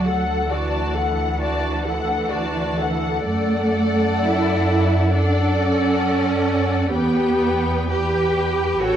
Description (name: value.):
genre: classical, slow romantic movement for symphony orchestra.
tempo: 59-68 BPM.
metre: 4/4.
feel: rubato.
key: D major from 3.3 s.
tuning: A4 = 439 Hz.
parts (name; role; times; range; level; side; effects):
warm symphonic violin section; melody; 0.0-9.0 s; F#5 to A5; -29 LUFS; left 2 dB; none.
warm symphonic violin section; second line; 0.0-9.0 s; B4 to F#5; -27 LUFS; left 5 dB; none.
rich studio viola section; accompaniment; 0.0-9.0 s; F#4 to A4; -25 LUFS; left 1 dB; none.
rich symphonic cello section; bass; 0.0-9.0 s; E3 to G4; -22 LUFS; right 3 dB; none.
rich symphonic double bass section; bass; 0.0-9.0 s; A1 to F#2; -23 LUFS; right 1 dB; none.
room: moderate scoring stage reverb, RT60 1.5 s.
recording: worn, warbling old tape, cassette tape, warbly pitch drift.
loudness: -18 LUFS.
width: side -9 dB against mid.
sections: 0.0-9.0 A section.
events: none.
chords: 0.0 D; 3.3 D/F#; 6.9 Em.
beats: 0.52 1.41 2.31 | 3.28 4.25 5.14 6.02 | 6.92 7.90 8.81.